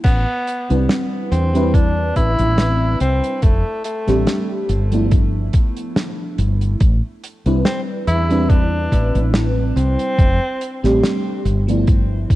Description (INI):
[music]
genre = vaporwave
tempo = 71 BPM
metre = 4/4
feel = swing 55% on 16ths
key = A minor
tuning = A4 = 440 Hz
[part]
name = breathy tenor saxophone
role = melody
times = 0.0-11.0 s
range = A3 to E4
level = -24 LUFS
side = equal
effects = tape echo
[part]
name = FM electric piano with soft pad layer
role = accompaniment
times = 0.0-12.4 s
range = F3 to B4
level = -21 LUFS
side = equal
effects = ensemble chorus, analog delay
[part]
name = woody fretless electric bass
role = bass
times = 0.0-12.3 s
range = F1 to E2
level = -18 LUFS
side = equal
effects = tube saturation
[part]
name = damped 70s drum kit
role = drums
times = 0.0-12.4 s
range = crash cymbal, hi-hat, snare drum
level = -24 LUFS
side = right 1 dB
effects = studio reverb
[part]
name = electronic kick drum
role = drums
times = 0.0-12.4 s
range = none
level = -14 LUFS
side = equal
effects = studio reverb
[sound]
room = light reverb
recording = dark, warm production, cassette tape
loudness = -15 LUFS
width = side -16 dB against mid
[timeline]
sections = 0.0-12.4 A section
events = none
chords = 0.0 Am11; 3.4 F69; 4.7 G13; 6.8 Am11; 10.2 F69; 11.5 G13